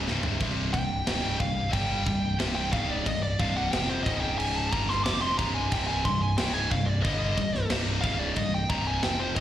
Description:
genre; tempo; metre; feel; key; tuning
heavy metal; 90 BPM; 4/4; straight; C minor; A4 = 440 Hz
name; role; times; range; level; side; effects
heavy high-gain guitar; riff; 0.0-9.4 s; C2 to G3; -29 LUFS; left 1 dB; distortion, slapback echo
growling picked electric bass; bass; 0.0-9.4 s; C1 to G1; -32 LUFS; equal; overdrive
tight metal drum kit; drums; 0.1-9.4 s; crash cymbal, kick drum, snare drum, toms; -32 LUFS; equal; none
high-gain lead guitar; melody; 0.7-9.4 s; C5 to D6; -30 LUFS; equal; distortion, slapback echo, digital delay
room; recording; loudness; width
little or no reverb; live gig heard through the venue's PA, recital hall reverb; -24 LUFS; side -11 dB against mid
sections
0.0-9.4 A section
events
lead electric guitar solo 0.0-9.4; drum fill 0.1-0.4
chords
0.0 C5; 4.1 Db5; 4.7 C5

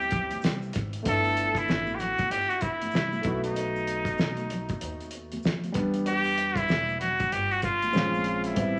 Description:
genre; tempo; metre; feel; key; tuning
hip hop, jazz-hop; 96 BPM; 4/4; swing 61% on 16ths; G major; A4 = 441 Hz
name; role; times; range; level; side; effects
trumpet with straight mute; melody; 0.0-8.8 s; D#4 to A4; -30 LUFS; equal; none
warm upright piano; accompaniment; 0.0-8.8 s; G3 to F#4; -35 LUFS; equal; none
upright bass; bass; 0.0-8.8 s; E1 to F2; -39 LUFS; equal; none
tube shaker and congas; percussion; 0.0-8.8 s; none; -42 LUFS; equal; none
cloth-damped thuddy drum kit; drums; 0.1-8.7 s; hi-hat, kick drum, snare drum; -33 LUFS; equal; none
room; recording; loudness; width
moderate large studio reverb, RT60 1.1 s; vinyl crackle; -27 LUFS; mono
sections
0.0-1.1 A section; 1.1-8.8 B section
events
none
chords
0.0 Am9 (rootless); 1.1 G69; 3.2 B7; 5.8 Em7; 7.9 Bbm9

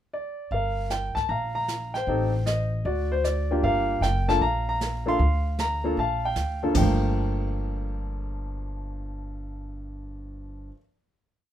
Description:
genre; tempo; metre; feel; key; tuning
jazz piano trio; 154 BPM; 4/4; swing 67% on 8ths; G minor; A4 = 436 Hz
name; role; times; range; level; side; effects
warm grand piano; melody; 0.1-10.8 s; G2 to C6; -27 LUFS; equal; none
upright bass; bass; 0.5-10.7 s; F#1 to D2; -28 LUFS; equal; none
jazz brush drum kit; drums; 0.5-7.1 s; brushed snare drum, crash cymbal, hi-hat, kick drum, snare drum, toms; -31 LUFS; right 2 dB; none
room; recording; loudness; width
light reverb; minimal, uncompressed stereo recording; -23 LUFS; side -11 dB against mid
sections
0.0-0.5 pickup bar; 0.5-6.8 A section; 6.8-9.9 final chord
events
none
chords
0.0 N.C.; 0.5 Gm7; 2.1 Am7b5; 2.9 D; 3.6 Gm9

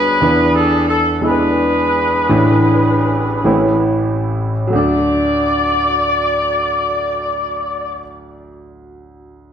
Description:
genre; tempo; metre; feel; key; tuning
gospel; 44-60 BPM (dotted quarters); 6/8; straight; D major; A4 = 436 Hz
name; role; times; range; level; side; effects
warm horn section; melody; 0.0-8.0 s; D4 to D5; -16 LUFS; left 1 dB; none
warm concert grand piano; accompaniment; 0.0-9.5 s; A1 to C#5; -16 LUFS; equal; none
room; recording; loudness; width
wet recital hall reverb, RT60 1.4 s; none; -13 LUFS; side -8 dB against mid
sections
0.0-4.7 A section; 4.7-9.5 B section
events
slowing down 0.2-4.7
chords
0.2 E7; 2.3 Asus4; 3.4 A; 4.7 D

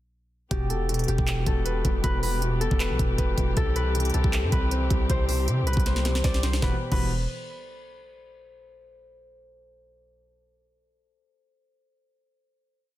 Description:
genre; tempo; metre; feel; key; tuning
hip hop, trap; 157 BPM; 4/4; half-time; E minor; A4 = 439 Hz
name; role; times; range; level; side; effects
Celtic harp; melody; 0.5-7.1 s; G4 to D5; -32 LUFS; left 3 dB; ping-pong delay
dark grand piano; accompaniment; 0.5-7.1 s; B2 to C5; -31 LUFS; equal; none
muted chamber string section; sustained chords; 0.5-6.8 s; E3 to G4; -36 LUFS; left 2 dB; none
hard-hitting 808-style bass; bass; 0.5-7.3 s; E1 to C3; -26 LUFS; equal; none
trap drum kit; drums; 0.5-7.0 s; crash cymbal, handclaps, hi-hat, kick drum, snare drum; -26 LUFS; equal; overdrive
room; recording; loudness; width
small room ambience; dense, heavily limited modern master, faint mains hum; -22 LUFS; side -14 dB against mid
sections
0.5-6.6 hook; 6.6-8.2 final chord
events
drum fill 5.9-6.6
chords
0.5 Em; 3.6 C; 6.6 Em

